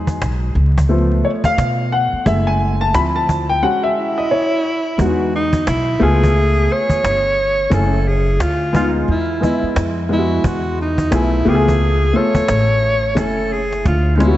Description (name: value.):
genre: hip hop, jazz-hop.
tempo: 88 BPM.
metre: 4/4.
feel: swing 60% on 16ths.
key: E major.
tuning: A4 = 440 Hz.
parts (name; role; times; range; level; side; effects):
dark grand piano; accompaniment; 0.0-14.4 s; E#3 to B5; -18 LUFS; left 1 dB; analog chorus.
upright bass; bass; 0.0-14.4 s; F#1 to B2; -18 LUFS; equal; none.
cajon; drums; 0.1-14.4 s; none; -24 LUFS; equal; none.
breathy alto saxophone; melody; 4.0-14.4 s; D#4 to C#5; -19 LUFS; right 1 dB; diffuse ambient delay.
room: moderate lush hall reverb, RT60 2.7 s.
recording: dreamy mix soaked in reverb, vinyl crackle, nothing above 8.0 kHz.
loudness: -14 LUFS.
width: side -14 dB against mid.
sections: 0.0-5.0 A section; 5.0-14.4 B section.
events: grand piano solo 0.0-5.0; drums muted 3.6-5.0; drum fill 13.2-14.4.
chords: 0.0 Emaj9; 0.6 C#7b13; 2.3 F#m9; 2.9 Dm9; 3.6 E69; 5.0 Emaj9; 6.0 C#7b13; 7.7 F#m9; 8.4 Dm; 9.1 Emaj9; 11.5 C#7b13; 13.2 F#m9; 13.9 Dmadd9.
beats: 0.22 0.90 1.58 | 2.26 2.95 3.63 4.31 | 4.99 5.67 6.36 7.04 | 7.72 8.40 9.08 9.76 | 10.45 11.13 11.81 12.49 | 13.17 13.86.